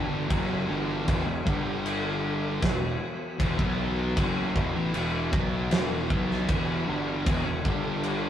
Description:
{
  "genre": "stoner and doom metal",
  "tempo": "78 BPM",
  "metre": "4/4",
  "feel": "straight",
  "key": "E minor",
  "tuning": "A4 = 440 Hz",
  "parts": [
    { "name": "tonewheel organ", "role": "sustained chords", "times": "0.0-8.3 s", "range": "E3 to A4", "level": "-37 LUFS", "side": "equal", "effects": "none" },
    { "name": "thick fuzz guitar", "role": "riff", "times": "0.0-8.3 s", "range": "E2 to B3", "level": "-33 LUFS", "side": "left 4 dB", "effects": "distortion" },
    { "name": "thick fuzz guitar", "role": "riff", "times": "0.0-8.3 s", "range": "E2 to B3", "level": "-35 LUFS", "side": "right 4 dB", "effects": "distortion" },
    { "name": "tight distorted guitar", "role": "riff", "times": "0.0-8.3 s", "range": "E2 to B3", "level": "-34 LUFS", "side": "right 1 dB", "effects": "distortion" },
    { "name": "fuzz fingered electric bass", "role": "bass", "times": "0.0-8.3 s", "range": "E1 to B1", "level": "-34 LUFS", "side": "equal", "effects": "overdrive" },
    { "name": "big rock drum kit", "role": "drums", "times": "0.3-8.2 s", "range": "crash cymbal, kick drum, snare drum", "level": "-28 LUFS", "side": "equal", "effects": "none" }
  ],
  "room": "light reverb",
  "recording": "rough rehearsal-room recording",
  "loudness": "-25 LUFS",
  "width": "side -10 dB against mid",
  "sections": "0.0-8.3 A section",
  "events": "none",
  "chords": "0.0 Em; 1.5 G5; 2.6 Em; 7.7 G5"
}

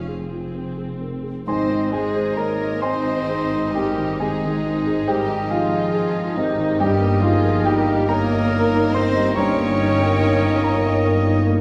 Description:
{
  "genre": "classical",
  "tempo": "43-48 BPM (dotted quarters)",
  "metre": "12/8",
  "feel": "rubato",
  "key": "Ab major",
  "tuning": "A4 = 440 Hz",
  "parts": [
    { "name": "dark concert grand piano", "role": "melody", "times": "0.0-11.6 s", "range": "G2 to Db6", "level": "-25 LUFS", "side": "equal", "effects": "none" },
    { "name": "rich symphonic violin section", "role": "melody", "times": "0.0-11.6 s", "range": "Eb4", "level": "-38 LUFS", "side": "equal", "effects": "none" },
    { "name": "rich chamber violin section", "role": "second line", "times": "0.0-11.4 s", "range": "Eb4 to Db5", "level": "-34 LUFS", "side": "equal", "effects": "none" },
    { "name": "rich studio viola section", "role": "accompaniment", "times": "0.0-11.5 s", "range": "Eb3 to Db4", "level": "-30 LUFS", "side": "equal", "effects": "none" },
    { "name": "dark chamber double bass section", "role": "bass", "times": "0.0-11.6 s", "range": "F1 to Ab1", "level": "-35 LUFS", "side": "equal", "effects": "none" },
    { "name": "rich chamber cello section", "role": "bass", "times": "0.0-11.6 s", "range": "F2 to Ab2", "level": "-28 LUFS", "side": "equal", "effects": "none" },
    { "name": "clear oboe", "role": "second line", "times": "1.5-11.6 s", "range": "Eb5", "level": "-33 LUFS", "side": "equal", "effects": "none" },
    { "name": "mellow silver concert flute", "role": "second line", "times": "1.5-11.4 s", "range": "G4 to G5", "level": "-33 LUFS", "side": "equal", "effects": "none" },
    { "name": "dark bassoon", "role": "accompaniment", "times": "1.5-11.6 s", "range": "Ab3 to Bb3", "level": "-35 LUFS", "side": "equal", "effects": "none" },
    { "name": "mellow French horn section", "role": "sustained chords", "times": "1.5-11.6 s", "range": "Ab3 to Eb4", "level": "-30 LUFS", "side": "equal", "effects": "none" },
    { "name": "mellow trumpet section", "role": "stabs", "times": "1.5-11.5 s", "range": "Eb4 to Db5", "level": "-30 LUFS", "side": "equal", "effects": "none" },
    { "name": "mellow tuba", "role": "bass", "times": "1.5-11.6 s", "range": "G1 to Ab1", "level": "-33 LUFS", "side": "equal", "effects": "none" }
  ],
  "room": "wet recital hall reverb, RT60 1.4 s",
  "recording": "heard from further back in the room",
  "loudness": "-20 LUFS",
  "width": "mono",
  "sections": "0.0-1.5 A section; 1.5-11.6 B section",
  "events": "none",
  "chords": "0.0 Fm; 1.5 Ab; 6.8 Eb7/G"
}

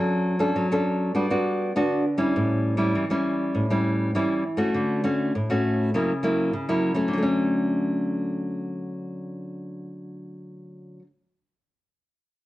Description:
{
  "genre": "samba",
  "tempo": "101 BPM",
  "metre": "4/4",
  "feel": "straight",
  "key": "D major",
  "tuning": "A4 = 436 Hz",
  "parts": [
    { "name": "nylon-string guitar", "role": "solo", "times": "0.0-11.1 s", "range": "A2 to A4", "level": "-22 LUFS", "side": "equal", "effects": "none" }
  ],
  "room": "moderate large studio reverb, RT60 0.8 s",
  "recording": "worn, warbling old tape, cassette tape, warbly pitch drift",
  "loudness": "-22 LUFS",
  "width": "side -16 dB against mid",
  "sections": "0.0-4.7 A section; 4.7-7.1 B section; 7.1-9.5 C section",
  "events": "none",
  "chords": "0.0 Dmaj7/F#; 1.2 Gmaj7; 2.4 A7; 4.7 Dmaj7; 5.9 F#7/C#; 7.1 Dmaj7"
}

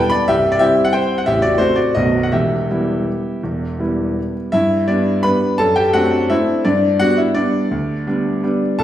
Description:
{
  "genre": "classical, piano waltz",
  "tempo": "157-190 BPM",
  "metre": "3/4",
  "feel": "rubato",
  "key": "E minor, G major from 4.5 s",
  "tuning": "A4 = 439 Hz",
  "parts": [
    { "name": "clear baby grand piano", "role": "solo", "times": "0.0-8.8 s", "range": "A0 to B5", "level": "-14 LUFS", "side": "equal", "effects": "none" }
  ],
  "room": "wet recital hall reverb, RT60 1.4 s",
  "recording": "heard from further back in the room",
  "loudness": "-14 LUFS",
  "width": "side -11 dB against mid",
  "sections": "0.0-4.5 A section; 4.5-8.8 B section",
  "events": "none",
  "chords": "0.3 C; 1.3 F#dim/A; 2.0 B7; 2.3 Em; 4.5 G; 5.6 D7/F#; 6.7 G"
}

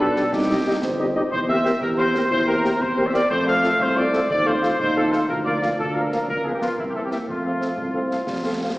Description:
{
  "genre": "military-style march for wind band",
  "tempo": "121 BPM (dotted quarters)",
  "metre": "6/8",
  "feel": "straight",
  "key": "F major",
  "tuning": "A4 = 439 Hz",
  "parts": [
    { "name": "warm trumpet section", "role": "melody", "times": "0.0-8.7 s", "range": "E4 to F5", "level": "-23 LUFS", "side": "equal", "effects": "none" },
    { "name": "dark woodwind section", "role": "second line", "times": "0.0-8.7 s", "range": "G4 to F5", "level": "-28 LUFS", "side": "equal", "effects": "none" },
    { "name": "warm euphonium", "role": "second line", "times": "0.0-8.8 s", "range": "G3 to G4", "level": "-27 LUFS", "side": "right 1 dB", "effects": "none" },
    { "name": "mellow French horn section", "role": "accompaniment", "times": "0.0-8.7 s", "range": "E3 to G4", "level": "-28 LUFS", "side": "left 1 dB", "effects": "none" },
    { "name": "mellow tuba", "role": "bass", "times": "0.0-8.7 s", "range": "G1 to F2", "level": "-26 LUFS", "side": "equal", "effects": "none" },
    { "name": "concert snare drum and concert bass drum", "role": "drums", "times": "0.2-8.8 s", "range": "none", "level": "-34 LUFS", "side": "equal", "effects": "none" }
  ],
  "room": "wet scoring stage reverb, RT60 1.9 s",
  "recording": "heard from further back in the room, small speaker sound",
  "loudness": "-19 LUFS",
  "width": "side -19 dB against mid",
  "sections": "0.0-8.8 A section",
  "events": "none",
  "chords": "0.3 Cm; 1.3 C7/E; 3.3 F; 4.3 F7/Eb; 5.3 Bb/D; 6.3 Db7; 6.8 C7; 7.3 F"
}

